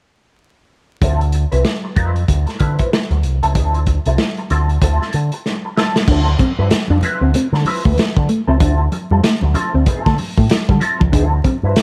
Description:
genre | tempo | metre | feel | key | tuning
funk | 95 BPM | 4/4 | swing 60% on 16ths | D dorian | A4 = 441 Hz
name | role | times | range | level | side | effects
mellow electric guitar | accompaniment | 1.0-11.8 s | F3 to B4 | -25 LUFS | equal | wah, ensemble chorus
picked electric bass with an envelope filter | bass | 1.0-11.8 s | C2 to D3 | -18 LUFS | equal | none
crunchy breakbeat drum kit | drums | 1.0-11.8 s | crash cymbal, hi-hat, kick drum, snare drum | -20 LUFS | equal | none
mellow electric guitar | riff | 6.1-11.6 s | F3 to D4 | -22 LUFS | equal | none
congas | percussion | 6.1-11.6 s | none | -30 LUFS | equal | none
room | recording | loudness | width
small room ambience | vinyl crackle | -16 LUFS | mono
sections
1.0-6.1 A section; 6.1-11.8 B section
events
drum fill 5.4-6.1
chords
1.0 Dm9

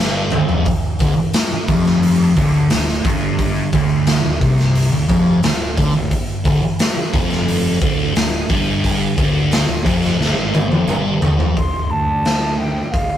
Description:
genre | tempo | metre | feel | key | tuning
psychedelic rock | 88 BPM | 4/4 | straight | D minor | A4 = 440 Hz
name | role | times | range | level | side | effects
thick fuzz guitar | riff | 0.0-11.6 s | D2 to D3 | -17 LUFS | equal | distortion, phaser
fuzz fingered electric bass | bass | 0.0-13.1 s | D1 to D2 | -24 LUFS | equal | overdrive
tambourine | percussion | 0.1-11.4 s | none | -41 LUFS | right 4 dB | none
raw garage drum kit | drums | 0.3-13.1 s | hi-hat, kick drum, snare drum, toms | -18 LUFS | equal | none
breathy mellow concert flute | melody | 11.6-13.2 s | F5 to C6 | -21 LUFS | right 1 dB | none
room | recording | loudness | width
light reverb | rough rehearsal-room recording, warm saturation | -14 LUFS | side -10 dB against mid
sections
0.0-11.6 A section; 11.6-13.2 B section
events
drum fill 0.0-0.7, 10.2-11.6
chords
0.0 Dm; 11.6 D5

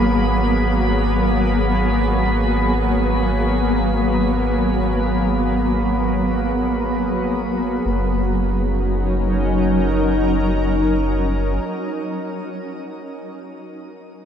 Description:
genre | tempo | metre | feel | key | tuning
ambient | free time | none | none | F# major | A4 = 441 Hz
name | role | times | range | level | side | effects
shimmering ambient pad | sustained chords | 0.0-12.1 s | F#3 to A#4 | -19 LUFS | equal | chorus, built-in reverb, shimmer reverb
warm sub bass | bass | 0.0-11.6 s | F#1 to G#1 | -22 LUFS | equal | none
drifting glass-harmonics texture | texture | 0.0-7.9 s | B5 | -29 LUFS | equal | chorus, built-in reverb, shimmer reverb
room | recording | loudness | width
wet huge ambient reverb, RT60 7.8 s | dark, warm production | -17 LUFS | side -8 dB against mid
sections
0.0-7.9 A section; 7.9-11.5 B section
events
none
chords
0.0 G#m9; 7.9 F#6

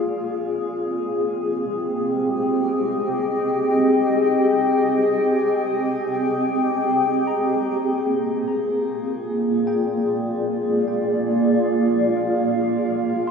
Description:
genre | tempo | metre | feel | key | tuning
ambient | free time | none | none | unclear | A4 = 440 Hz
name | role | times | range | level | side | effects
granular cloud pad | sustained chords | 0.0-13.3 s | Bb3 to G5 | -19 LUFS | equal | built-in reverb, shimmer reverb
tine electric piano | arpeggios | 7.3-13.3 s | G5 to C6 | -39 LUFS | left 1 dB | lush chorus, ping-pong delay, shimmer reverb
room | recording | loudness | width
wet lush hall reverb, RT60 2.8 s | dreamy mix soaked in reverb | -19 LUFS | side -6 dB against mid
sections
0.0-7.3 A section; 7.3-13.3 B section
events
filter sweep on ambient pad 0.0-7.3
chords
0.1 Abmaj7; 7.3 Bb7

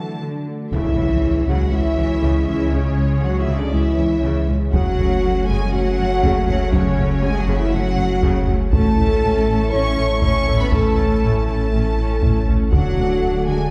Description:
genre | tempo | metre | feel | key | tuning
cinematic, hybrid orchestral and electronic film score | 120 BPM | 4/4 | straight | C# phrygian | A4 = 439 Hz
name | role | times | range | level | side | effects
sweeping resonant pad | sustained chords | 0.0-13.7 s | G#3 to C#5 | -30 LUFS | equal | subtle chorus
harp-like synth pluck | arpeggios | 0.0-13.6 s | C#3 to A4 | -30 LUFS | equal | none
rich symphonic cello section | bass | 0.0-13.7 s | C#3 to C#4 | -29 LUFS | equal | none
warm symphonic violin section | second line | 0.7-13.7 s | C#5 to C#6 | -30 LUFS | equal | none
warm studio viola section | accompaniment | 0.7-13.7 s | C#3 to D4 | -31 LUFS | equal | none
clear French horn section | sustained chords | 0.7-13.7 s | C#4 to C#5 | -25 LUFS | equal | none
punchy sub bass | bass | 0.7-13.7 s | D1 to C#2 | -25 LUFS | equal | none
warm studio double bass section | bass | 0.7-13.6 s | F#1 to D2 | -27 LUFS | equal | none
solo taiko drums | drums | 0.7-1.7, 4.7-13.2 s | none | -24 LUFS | equal | none
impact | sound effects | 0.7-2.7 s | none | -29 LUFS | equal | none
room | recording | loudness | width
wet scoring stage reverb, RT60 2.1 s | heard from further back in the room | -18 LUFS | mono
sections
0.7-13.7 A section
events
impact 0.7-2.7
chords
0.0 D; 0.7 C#m; 4.7 F#m; 8.7 A; 12.7 D

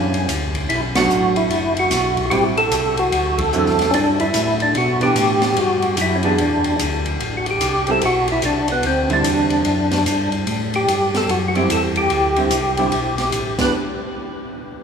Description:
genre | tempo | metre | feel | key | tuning
soul jazz organ trio | 147 BPM | 4/4 | swing 64% on 8ths | unclear | A4 = 439 Hz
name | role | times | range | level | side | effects
percussive tonewheel organ | melody | 0.0-13.7 s | B3 to B4 | -18 LUFS | equal | slow rotary speaker, chorus vibrato
vintage hollow-body jazz guitar | accompaniment | 0.0-13.7 s | D3 to Ab4 | -25 LUFS | right 3 dB | none
mellow tonewheel organ | bass | 0.0-13.7 s | F#1 to B2 | -25 LUFS | equal | slow rotary speaker
open jazz drum kit | drums | 0.1-13.7 s | crash cymbal, hi-hat, kick drum, ride cymbal, snare drum | -24 LUFS | left 2 dB | none
room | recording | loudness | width
wet cathedral reverb, RT60 5.8 s | recorded in a church or concert hall, small room ambience | -16 LUFS | side -6 dB against mid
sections
0.0-7.2 A section; 7.2-13.7 B section; 13.7-14.8 C section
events
band accent 0.9, 3.3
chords
0.0 F#7b13; 0.7 Bm7; 2.3 Am7; 3.1 D9; 3.9 G6; 6.4 Dsus2; 7.2 Am7; 8.8 D9sus4; 10.5 Am7; 12.1 D9sus4; 13.5 G6; 13.7 N.C.

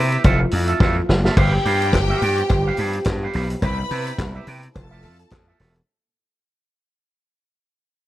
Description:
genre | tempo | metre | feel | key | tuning
disco | 106 BPM | 4/4 | swing 56% on 16ths | unclear | A4 = 440 Hz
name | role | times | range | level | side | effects
electric guitar with an envelope filter | accompaniment | 0.0-5.8 s | F4 to G5 | -26 LUFS | right 5 dB | none
mellow French horn section | sustained chords | 0.0-5.9 s | C3 to G4 | -27 LUFS | equal | none
gritty slap bass | bass | 0.0-5.8 s | E1 to C3 | -21 LUFS | equal | overdrive
vintage drum kit | drums | 0.1-5.9 s | crash cymbal, handclaps, hi-hat, kick drum, snare drum | -21 LUFS | equal | none
cowbell | percussion | 0.2-5.5 s | none | -30 LUFS | left 6 dB | none
clear studio string section | second line | 1.4-5.6 s | G4 to B5 | -27 LUFS | left 2 dB | none
room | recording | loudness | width
little or no reverb | dark, warm production | -17 LUFS | side -15 dB against mid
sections
0.0-1.4 A section; 1.4-5.9 B section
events
drum fill 0.8-1.4; fade-out 1.4-5.9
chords
0.2 Fmaj7; 1.4 G7; 3.6 Cmaj7; 4.8 Fmaj7

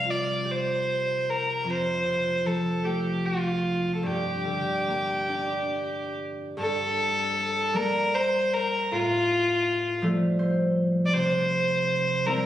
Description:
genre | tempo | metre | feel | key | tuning
celtic folk, Celtic slow air | 46-55 BPM (dotted quarters) | 6/8 | rubato | G minor | A4 = 440 Hz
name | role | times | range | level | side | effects
warm fiddle | melody | 0.0-12.5 s | F4 to F5 | -25 LUFS | equal | none
concert harp | accompaniment | 0.0-12.5 s | F2 to C5 | -28 LUFS | equal | none
room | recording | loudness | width
light reverb | recorded on a phone in the room, studio reverb, compression | -23 LUFS | side -12 dB against mid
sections
0.0-6.6 A section; 6.6-12.5 B section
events
harp fill 10.0-11.1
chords
0.0 Csus4; 1.7 F; 4.0 Gm; 6.6 Gmadd9; 8.9 Fadd9/A; 11.1 C

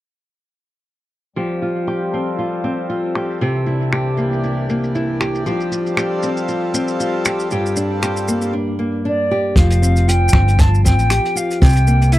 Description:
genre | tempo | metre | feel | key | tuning
folktronica | 117 BPM | 4/4 | swing 56% on 16ths | F major | A4 = 440 Hz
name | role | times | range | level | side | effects
hand-pumped harmonium | sustained chords | 1.4-8.5 s | C2 to A4 | -24 LUFS | left 2 dB | low-pass filter
nylon-string guitar | arpeggios | 1.4-12.2 s | G2 to G4 | -20 LUFS | equal | low-pass filter, tape echo
jazz brush drum kit | drums | 1.4-12.2 s | finger snaps, hi-hat, shaker | -24 LUFS | equal | low-pass filter on hats, low-pass filter on perc, low-pass filter on snare, low-pass filter on room
silver concert flute | melody | 9.1-12.2 s | D5 to A5 | -20 LUFS | equal | tape echo
hollow-body short-scale fingered electric bass | bass | 9.6-12.2 s | F1 to C2 | -13 LUFS | equal | none
kick drum | drums | 9.6-11.7 s | none | -14 LUFS | equal | none
room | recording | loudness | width
little or no reverb | dry, close 1970s-style studio recording | -15 LUFS | side -15 dB against mid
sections
1.4-9.6 A section; 9.6-12.2 B section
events
filter sweep on drum 1.4-9.6; filter sweep on harmonium 1.4-9.6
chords
1.4 Fadd9; 3.4 C7; 5.5 Fadd9; 7.5 Gm7; 9.6 Fsus2; 11.6 C7(no3)

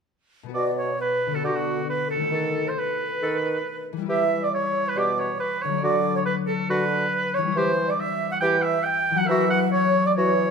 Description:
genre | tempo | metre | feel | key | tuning
classical, dramatic, fast romantic movement for symphony orchestra | 137 BPM | 4/4 | rubato | B minor | A4 = 441 Hz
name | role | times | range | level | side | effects
concert harp | arpeggios | 0.4-10.5 s | B2 to D5 | -28 LUFS | left 8 dB | none
clear oboe | second line | 0.5-10.5 s | F#4 to G5 | -25 LUFS | right 2 dB | none
mellow bassoon | accompaniment | 0.5-10.5 s | B2 to E3 | -29 LUFS | right 2 dB | none
bright clarinet | second line | 0.6-10.3 s | F#4 to A4 | -31 LUFS | left 2 dB | none
mellow large flute ensemble | second line | 0.6-10.5 s | F#4 to G5 | -27 LUFS | right 2 dB | none
room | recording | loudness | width
moderate scoring stage reverb, RT60 1.6 s | none | -21 LUFS | side -6 dB against mid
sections
0.5-10.5 A section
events
none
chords
0.5 B5; 1.4 Bm/D; 2.3 B7/D#; 4.1 Em; 5.8 Bm/D; 7.6 C/E; 9.3 F#7/E

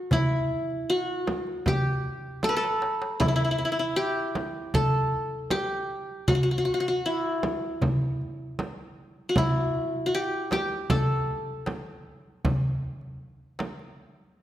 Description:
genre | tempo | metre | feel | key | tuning
Turkish makam ensemble | 78 BPM | 4/4 | straight | A makam huseyni | A4 = 440 Hz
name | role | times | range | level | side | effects
qanun | melody | 0.0-14.4 s | E4 to B4-30c | -27 LUFS | left 1 dB | none
darbuka | percussion | 0.1-13.9 s | none | -28 LUFS | equal | none
frame drum | percussion | 0.1-13.8 s | none | -31 LUFS | right 2 dB | none
room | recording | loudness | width
wet recital hall reverb, RT60 1.7 s | none | -25 LUFS | side -12 dB against mid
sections
0.0-14.4 A section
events
drum fill 2.4-3.2; break 14.0-14.4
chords
none

